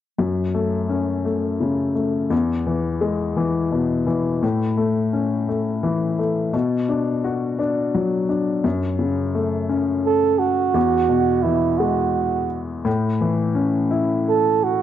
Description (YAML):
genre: six-eight pop ballad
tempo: 57 BPM (dotted quarters)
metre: 6/8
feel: straight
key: F# minor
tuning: A4 = 440 Hz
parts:
  - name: warm upright piano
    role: accompaniment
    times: 0.2-14.8 s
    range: E2 to F#4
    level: -20 LUFS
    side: left 3 dB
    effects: cassette tape
  - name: breathy flugelhorn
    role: melody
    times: 10.1-14.8 s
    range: E4 to A4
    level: -18 LUFS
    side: right 9 dB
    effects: cassette tape
room: moderate spring reverb, RT60 1.6 s, small room ambience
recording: home recording on cassette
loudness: -18 LUFS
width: side -11 dB against mid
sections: 0.2-8.6 A section; 8.6-14.8 B section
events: none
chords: 0.2 F#m; 2.3 E; 4.4 A; 6.5 Bm; 8.6 F#m; 10.8 Eadd9; 12.9 A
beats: | 0.20 1.26 | 2.32 3.37 | 4.43 5.48 | 6.54 7.59 | 8.65 9.70 | 10.75 11.81 | 12.86 13.91